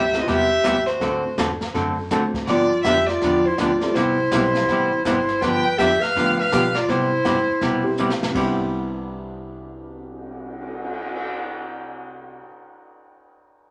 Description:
country, western swing; 163 BPM; 4/4; swing 63% on 8ths; C major; A4 = 438 Hz
dark fiddle; melody; 0.0-8.0 s; C5 to G5; -24 LUFS; equal
warm clarinet; second line; 0.0-8.0 s; E4 to B4; -25 LUFS; equal
archtop guitar, miked and amplified; accompaniment; 0.0-12.4 s; C3 to A4; -26 LUFS; equal
upright bass; bass; 0.0-12.4 s; G1 to C3; -35 LUFS; equal
warm upright piano; accompaniment; 0.1-12.5 s; C3 to B4; -32 LUFS; equal
jazz brush drum kit; drums; 0.1-11.2 s; brushed snare drum, crash cymbal, cymbal swell, hi-hat, kick drum, snare drum; -33 LUFS; equal
wet studio reverb, RT60 0.6 s; -21 LUFS; mono
0.0-5.4 A section; 5.4-8.4 B section; 8.4-11.3 C section
drum fill 8.0-8.4
0.0 Cmaj7; 1.0 D7; 2.5 G7; 3.9 Cmaj7; 5.4 G7; 6.9 Cmaj7
0.27 0.64 | 1.01 1.38 1.74 2.11 | 2.48 2.85 3.21 3.58 | 3.95 4.32 4.68 5.05 | 5.42 5.79 6.15 6.52 | 6.89 7.25 7.62 7.99 | 8.36 8.72 9.09 9.46 | 9.82 10.19 10.56 10.92

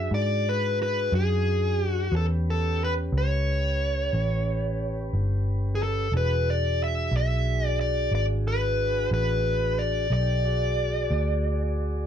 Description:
slow blues; 60 BPM (dotted quarters); 12/8; straight; E mixolydian; A4 = 440 Hz
dark smooth lead guitar; melody; 0.0-12.1 s; G#4 to E5; -27 LUFS; left 1 dB; overdrive
mellow tonewheel organ; sustained chords; 0.0-12.1 s; C#4 to D5; -34 LUFS; right 2 dB; slow rotary speaker
vintage muted picked electric bass; bass; 0.0-12.1 s; E1 to G#2; -25 LUFS; equal
light reverb; dark, warm production; -23 LUFS; side -9 dB against mid
0.0-12.1 A section
0.0 E7 (rootless); 2.1 A7; 6.1 E7
0.11 1.11 | 2.12 3.12 4.12 5.12 | 6.12 7.12 8.12 9.11 | 10.11 11.10

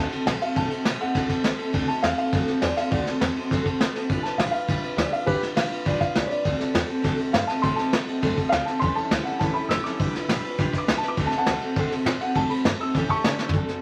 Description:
rockabilly; 203 BPM; 4/4; straight; D mixolydian; A4 = 440 Hz
dark upright piano; melody; 0.0-13.8 s; D4 to E6; -29 LUFS; equal
picked steel-string acoustic guitar; accompaniment; 0.0-13.8 s; A2 to B4; -30 LUFS; equal
upright bass; bass; 0.0-13.7 s; F#1 to C#3; -36 LUFS; equal
vintage brush drum kit; drums; 0.1-13.8 s; hi-hat, kick drum, ride cymbal, snare drum, toms; -28 LUFS; equal
moderate club reverb, RT60 0.6 s; vinyl crackle; -24 LUFS; mono
0.0-13.5 A section
upright piano solo 0.0-13.5; drum fill 13.4
0.0 D7; 4.1 G7; 6.5 D7; 8.8 A7; 10.0 G7; 11.2 D7; 12.9 A7
0.26 | 0.56 0.85 1.15 1.44 | 1.74 2.03 2.33 2.62 | 2.92 3.21 3.51 3.80 | 4.09 4.39 4.68 4.98 | 5.28 5.57 5.87 6.16 | 6.46 6.75 7.04 7.34 | 7.63 7.93 8.22 8.52 | 8.81 9.11 9.40 9.70 | 9.99 10.29 10.59 10.88 | 11.18 11.47 11.76 12.06 | 12.35 12.65 12.94 13.24 | 13.54

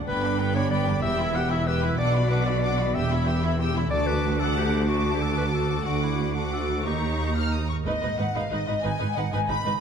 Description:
cinematic, heroic adventure film score; 124 BPM (dotted quarters); 12/8; straight; A4 = 440 Hz
concert harp; arpeggios; 0.0-9.8 s; E2 to F#5; -35 LUFS; left 11 dB
warm symphonic violin section; melody; 0.1-9.7 s; D#5 to F6; -34 LUFS; left 3 dB
bright clarinet; second line; 0.1-7.7 s; D4 to F#5; -30 LUFS; left 1 dB
rich symphonic violin section; second line; 0.1-9.8 s; D5 to B5; -35 LUFS; left 4 dB
clear symphonic viola section; accompaniment; 0.1-9.7 s; B3 to F#5; -32 LUFS; equal
bright symphonic cello section; bass; 0.1-9.7 s; D2 to B2; -28 LUFS; right 2 dB
rich symphonic double bass section; bass; 0.1-9.7 s; E1 to D#2; -28 LUFS; right 3 dB
flute section; second line; 7.9-9.8 s; D#5 to B5; -29 LUFS; left 2 dB
moderate scoring stage reverb, RT60 1.9 s; -22 LUFS; side -7 dB against mid
0.0-7.9 A section; 7.9-9.8 B section
0.1 G; 1.0 Em; 2.0 Bm; 3.0 Em; 3.9 D; 6.9 D#7; 7.9 G#m
| 0.08 0.56 1.03 1.51 | 1.99 2.47 2.95 3.43 | 3.92 4.40 4.89 5.38 | 5.86 6.35 6.86 7.36 | 7.86 8.35 8.84 9.33

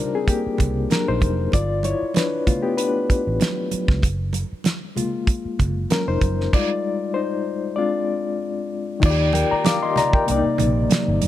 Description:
lush 1970s-style soul; 96 BPM; 4/4; swing 54% on 16ths; Eb major; A4 = 440 Hz
bright reed electric piano; accompaniment; 0.0-11.3 s; C3 to D6; -22 LUFS; left 4 dB; overdrive, tremolo
damped 70s drum kit; drums; 0.3-11.3 s; crash cymbal, hi-hat, kick drum, snare drum; -21 LUFS; right 1 dB
vintage muted fingered electric bass; bass; 0.5-11.3 s; F1 to Eb2; -23 LUFS; right 1 dB
congas; percussion; 0.6-11.3 s; -29 LUFS; right 6 dB
mellow French horn section; sustained chords; 9.0-11.3 s; C3 to D5; -30 LUFS; right 1 dB
light reverb, small room ambience; -19 LUFS; side -13 dB against mid
0.0-9.0 A section; 9.0-11.3 B section
reed electric piano solo 0.0-9.0
0.0 Ebmaj7; 1.5 G9; 4.0 Gbmaj9; 6.5 Fm7; 7.8 Fm6/Ab; 9.0 Ebmaj7; 10.3 Cm9
0.28 0.91 | 1.54 2.16 2.79 3.41 | 4.04 4.66 5.29 5.91 | 6.54 7.16 7.78 8.41 | 9.03 9.66 10.28 10.91

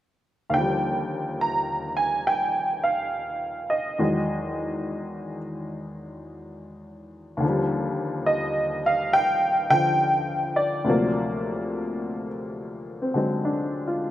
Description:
solo jazz; 70 BPM; 4/4; swing 66% on 8ths; Eb major; A4 = 437 Hz
honky-tonk upright piano; solo; 0.5-14.1 s; D2 to Bb5; -23 LUFS; equal; slapback echo
little or no reverb; recorded outdoors, with no room sound; -23 LUFS; side -13 dB against mid
0.5-7.4 A section; 7.4-14.1 B section
0.0 N.C.; 0.5 Ebmaj9; 4.0 Emaj9; 7.4 Ebmaj9; 10.9 D7alt
| 0.55 1.41 2.27 3.13 | 3.99 4.85 5.71 6.57 | 7.43 8.29 9.15 10.01 | 10.87 11.73 12.59 13.45

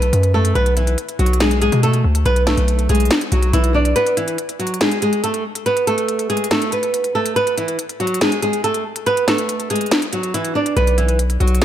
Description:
hip hop, trap; 141 BPM; 4/4; half-time; B dorian; A4 = 440 Hz
flamenco guitar; melody; 0.0-11.6 s; E3 to D5; -18 LUFS; right 1 dB; ping-pong delay
distorted 808-style bass; bass; 0.0-3.9, 10.8-11.6 s; B1 to B2; -16 LUFS; equal; distortion
trap drum kit; drums; 0.0-11.6 s; hi-hat, snare drum; -22 LUFS; left 1 dB
light reverb, digital ambience; -15 LUFS; side -11 dB against mid
0.0-11.6 A section
break 4.0-10.8; kick muted 9.1-10.8
0.0 N.C.; 4.0 B5
0.13 | 0.55 0.98 1.41 1.83 | 2.26 2.68 3.11 3.53 | 3.96 4.38 4.81 5.24 | 5.66 6.09 6.51 6.94 | 7.36 7.79 8.21 8.64 | 9.06 9.49 9.91 10.34 | 10.77 11.19 11.62

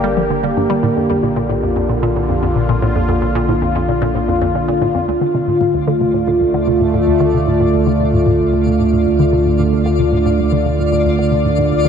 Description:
ambient, sequencer-driven space music; 113 BPM; 4/4; straight; D minor; A4 = 440 Hz
sweeping resonant pad; sustained chords; 0.0-11.9 s; D3 to D5; -15 LUFS; right 1 dB; chorus
hollow square pluck; riff; 0.0-11.9 s; D2 to G3; -19 LUFS; left 1 dB; chorus, phaser, tape echo
warm sub bass; bass; 0.0-11.9 s; G1 to D2; -21 LUFS; equal
twinkling granular texture; texture; 5.6-11.9 s; F4 to D5; -30 LUFS; left 2 dB; built-in reverb
moderate huge ambient reverb, RT60 8.7 s; dreamy mix soaked in reverb; -13 LUFS; side -7 dB against mid
0.0-5.1 A section; 5.1-11.9 B section
fade-in on synth texture 5.1-11.9; filter sweep on synth arpeggio sound 5.1-11.9
0.0 Gm; 0.8 Bb; 5.1 Dm
0.30 | 0.83 1.37 1.90 2.43 | 2.96 3.49 4.02 4.55 | 5.08 5.61 6.14 6.68 | 7.21 7.74 8.27 8.80 | 9.33 9.86 10.39 10.92 | 11.46

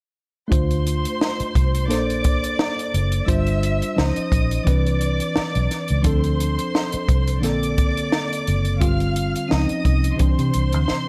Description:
lush 1970s-style soul; 87 BPM; 4/4; swing 54% on 16ths; A4 = 440 Hz
warm chamber string section; second line; 0.5-11.1 s; C5 to F6; -30 LUFS; equal
mellow tine electric piano; accompaniment; 0.5-11.1 s; C3 to C5; -27 LUFS; equal
vintage muted fingered electric bass; bass; 0.5-10.9 s; F#1 to C3; -24 LUFS; equal
compact cocktail drum kit; drums; 0.5-11.1 s; hi-hat, kick drum, snare drum; -25 LUFS; equal
studio reverb; -21 LUFS; mono
0.5-11.1 A section
drum fill 10.9
0.5 Dm7; 1.9 Bbmaj9; 3.3 G7sus4; 4.0 Dbmaj9; 4.7 Cmaj9; 6.0 Dm7; 7.4 Bbmaj9; 8.8 G7sus4; 9.5 Dbmaj9; 10.2 Cadd9
| 0.52 1.21 1.90 2.59 | 3.28 3.97 4.66 5.35 | 6.04 6.74 7.43 8.12 | 8.81 9.50 10.20 10.89

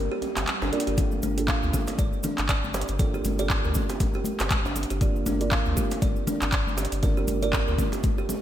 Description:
afro house; 119 BPM; 4/4; swing 58% on 16ths; G minor; A4 = 436 Hz
felt-muted upright piano; stabs; 0.0-8.4 s; Bb3 to D5; -32 LUFS; right 3 dB; sidechain pumping, digital delay
warm sub bass; bass; 0.0-8.2 s; G1 to D2; -30 LUFS; equal; sidechain pumping
swell; sound effects; 0.2-1.0 s; -38 LUFS; right 3 dB
kalimba; arpeggios; 0.1-8.3 s; D4 to F5; -32 LUFS; right 2 dB; sidechain pumping, digital delay
afro-pop drum kit; drums; 0.2-8.4 s; handclaps, hi-hat; -31 LUFS; equal; gated reverb
djembe; percussion; 0.2-8.4 s; -36 LUFS; right 2 dB
electronic kick drum; drums; 1.0-8.2 s; -26 LUFS; equal
cabasa; percussion; 1.0-8.4 s; -40 LUFS; right 1 dB
congas; percussion; 1.0-8.4 s; -34 LUFS; left 3 dB
light reverb, studio reverb; bright 1980s-style digital production; -23 LUFS; side -11 dB against mid
0.0-8.4 A section
break 0.0-1.0; swell 0.2-1.0
0.0 Bb/G; 1.0 Gm9; 5.0 Bb/G
0.47 | 0.98 1.48 1.99 2.49 | 3.00 3.50 4.00 4.51 | 5.01 5.52 6.02 6.52 | 7.03 7.53 8.04

